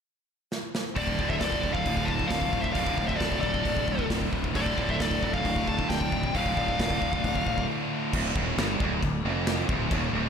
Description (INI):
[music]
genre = heavy metal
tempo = 134 BPM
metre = 4/4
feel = straight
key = D minor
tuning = A4 = 442 Hz
[part]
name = big rock drum kit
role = drums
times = 0.5-10.0 s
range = china cymbal, crash cymbal, hi-hat, kick drum, snare drum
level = -30 LUFS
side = equal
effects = none
[part]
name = high-gain lead guitar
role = melody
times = 1.0-7.7 s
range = D5 to A5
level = -30 LUFS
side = left 3 dB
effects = distortion, slapback echo, ping-pong delay
[part]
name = nasal lead guitar with a parked wah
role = second line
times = 1.0-7.6 s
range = A4 to F5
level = -38 LUFS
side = right 2 dB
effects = overdrive, slapback echo, ping-pong delay
[part]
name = pipe organ, trumpet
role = sustained chords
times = 1.0-8.1 s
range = D3 to A4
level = -43 LUFS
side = right 2 dB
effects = none
[part]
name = distorted electric guitar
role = riff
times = 1.0-10.3 s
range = D2 to D3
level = -32 LUFS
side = right 10 dB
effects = overdrive
[part]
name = scooped high-gain guitar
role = riff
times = 1.0-10.3 s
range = D2 to D3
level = -33 LUFS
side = left 10 dB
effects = distortion, slapback echo
[part]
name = fuzz fingered electric bass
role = bass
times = 1.0-10.3 s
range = D1 to G1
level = -32 LUFS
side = equal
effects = overdrive
[sound]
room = moderate lush hall reverb, RT60 1.6 s, studio reverb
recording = big arena sound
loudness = -25 LUFS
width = side -7 dB against mid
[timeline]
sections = 1.0-8.1 A section; 8.1-10.3 B section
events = drum fill 0.5-1.0; break 7.7-8.1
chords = 0.0 N.C.; 1.0 Dm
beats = 0.06 0.51 | 0.96 1.41 1.86 2.31 | 2.76 3.21 3.66 4.10 | 4.55 5.00 5.45 5.90 | 6.34 6.79 7.24 7.68 | 8.13 8.58 9.02 9.47 | 9.91